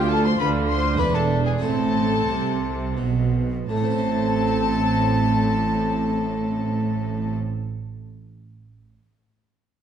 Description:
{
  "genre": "classical, baroque-style concerto movement with solo episodes",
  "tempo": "81-104 BPM",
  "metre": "3/4",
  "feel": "straight",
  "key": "A minor",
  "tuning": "A4 = 439 Hz",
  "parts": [
    { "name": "bright baroque flute", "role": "melody", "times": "0.0-7.3 s", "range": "G#5 to C6", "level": "-28 LUFS", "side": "left 3 dB", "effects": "none" },
    { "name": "warm chamber violin section", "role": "melody", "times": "0.0-7.3 s", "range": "G5 to C6", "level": "-32 LUFS", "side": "left 6 dB", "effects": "none" },
    { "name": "warm chamber violin section", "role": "second line", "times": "0.0-7.3 s", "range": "G4 to C5", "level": "-30 LUFS", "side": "left 3 dB", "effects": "none" },
    { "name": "dark chamber viola section", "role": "accompaniment", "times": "0.0-7.3 s", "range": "C4 to F4", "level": "-28 LUFS", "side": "right 2 dB", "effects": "none" },
    { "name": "harpsichord", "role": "accompaniment", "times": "0.0-7.6 s", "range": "D2 to C5", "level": "-33 LUFS", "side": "right 1 dB", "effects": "none" },
    { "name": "rich chamber cello section", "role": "bass", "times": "0.0-7.3 s", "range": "D2 to D3", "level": "-25 LUFS", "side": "right 1 dB", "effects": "none" },
    { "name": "rich chamber double bass section", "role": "bass", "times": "0.0-7.3 s", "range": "E1 to D2", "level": "-26 LUFS", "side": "right 4 dB", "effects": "none" }
  ],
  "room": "wet scoring stage reverb, RT60 1.5 s",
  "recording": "dark, warm production",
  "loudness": "-20 LUFS",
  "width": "side -8 dB against mid",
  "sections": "0.0-3.7 A section; 3.7-8.1 B section",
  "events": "slowing down 0.0-3.7",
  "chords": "0.0 Bdim/D; 1.0 E7; 1.6 Am",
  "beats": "0.40 1.00 | 1.62 2.28 2.97 | 3.69 4.43 5.16 | 5.90 6.63 7.37"
}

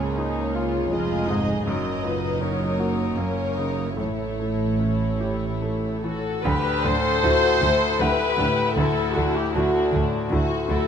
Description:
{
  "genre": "cinematic, emotional film score for orchestra",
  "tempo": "72-81 BPM",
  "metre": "3/4",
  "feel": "rubato",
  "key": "unclear",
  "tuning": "A4 = 438 Hz",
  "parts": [
    { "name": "dark studio violin section", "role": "second line", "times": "0.0-10.9 s", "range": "D4 to D#5", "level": "-30 LUFS", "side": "left 3 dB", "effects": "none" },
    { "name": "bright concert grand piano", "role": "accompaniment", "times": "0.0-10.9 s", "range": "C#2 to F#5", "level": "-26 LUFS", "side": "left 2 dB", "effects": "none" },
    { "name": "rich studio viola section", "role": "accompaniment", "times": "0.0-10.9 s", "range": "F#3 to C5", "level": "-25 LUFS", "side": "equal", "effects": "none" },
    { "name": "warm symphonic cello section", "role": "bass", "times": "0.0-10.8 s", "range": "E#2 to D3", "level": "-30 LUFS", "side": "right 2 dB", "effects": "none" },
    { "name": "warm symphonic double bass section", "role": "bass", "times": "0.0-10.8 s", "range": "E#1 to D2", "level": "-29 LUFS", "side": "right 4 dB", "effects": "none" },
    { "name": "warm studio violin section", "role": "melody", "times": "6.0-10.9 s", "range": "D4 to A4", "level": "-30 LUFS", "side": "left 6 dB", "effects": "none" }
  ],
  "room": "moderate scoring stage reverb, RT60 1.5 s",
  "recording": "close, detailed microphones",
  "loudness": "-20 LUFS",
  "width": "side -8 dB against mid",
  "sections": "0.0-6.5 A section; 6.5-10.9 B section",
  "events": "none",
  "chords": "0.0 C#add9; 1.7 F#; 4.0 A7; 6.5 Dadd9",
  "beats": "0.17 0.91 | 1.66 2.40 3.17 | 3.98 4.80 5.63 | 6.45 7.24 8.01 | 8.77 9.55 10.32"
}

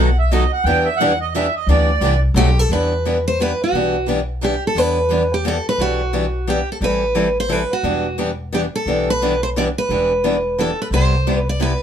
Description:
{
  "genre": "acoustic string swing (jazz manouche)",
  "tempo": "175 BPM",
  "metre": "3/4",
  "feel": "swing 62% on 8ths",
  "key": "E minor",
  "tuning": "A4 = 440 Hz",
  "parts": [
    { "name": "accordion", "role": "second line", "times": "0.0-2.2 s", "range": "D5 to G5", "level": "-19 LUFS", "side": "right 5 dB", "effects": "none" },
    { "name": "picked steel-string acoustic guitar", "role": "accompaniment", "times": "0.0-11.7 s", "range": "B2 to A4", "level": "-22 LUFS", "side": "left 3 dB", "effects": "none" },
    { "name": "picked steel-string acoustic guitar", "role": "accompaniment", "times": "0.0-11.7 s", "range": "B2 to B4", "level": "-25 LUFS", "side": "right 3 dB", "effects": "none" },
    { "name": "upright bass", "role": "bass", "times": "0.0-11.7 s", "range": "E1 to E2", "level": "-20 LUFS", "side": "equal", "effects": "none" },
    { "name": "picked steel-string acoustic guitar", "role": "melody", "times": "2.4-11.8 s", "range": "F#4 to D5", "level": "-19 LUFS", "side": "right 1 dB", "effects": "none" }
  ],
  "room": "light reverb",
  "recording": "band playing live in one room",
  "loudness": "-16 LUFS",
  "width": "side -9 dB against mid",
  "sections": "0.0-2.7 A section; 2.7-11.8 B section",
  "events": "accordion solo 0.0-2.7",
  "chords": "0.0 B7; 0.7 Em7; 2.4 B7; 2.7 Em9; 6.8 Am9; 7.8 Em7; 10.9 Cmaj7",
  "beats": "0.31 | 0.65 1.00 1.34 | 1.68 2.02 2.37 | 2.71 3.05 3.39 | 3.73 4.08 4.42 | 4.76 5.11 5.45 | 5.79 6.13 6.48 | 6.82 7.16 7.50 | 7.85 8.19 8.53 | 8.87 9.21 9.56 | 9.90 10.24 10.58 | 10.92 11.26 11.61"
}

